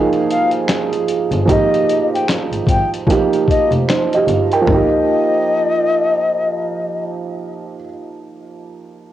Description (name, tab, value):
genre	lo-fi hip hop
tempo	75 BPM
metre	4/4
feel	swing 60% on 16ths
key	unclear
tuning	A4 = 440 Hz
part	dark upright piano	accompaniment	0.0-9.1 s	F3 to G5	-17 LUFS	right 4 dB	cassette tape, plate reverb
part	dusty soul sampler-style drum kit	drums	0.1-4.9 s	finger snaps, hi-hat, kick drum, snare drum, toms	-20 LUFS	left 2 dB	cassette tape
part	breathy mellow jazz flute	melody	0.3-7.0 s	Eb5 to G5	-18 LUFS	left 3 dB	cassette tape, analog delay
part	rich double bass	bass	1.3-4.8 s	F1 to Ab1	-20 LUFS	left 2 dB	transformer saturation
room	moderate small room reverb, RT60 0.5 s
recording	home recording on cassette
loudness	-13 LUFS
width	side -12 dB against mid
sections	0.0-4.7 A section; 4.7-7.9 B section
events	none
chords	0.0 Absus2; 4.7 Absus2 (rootless)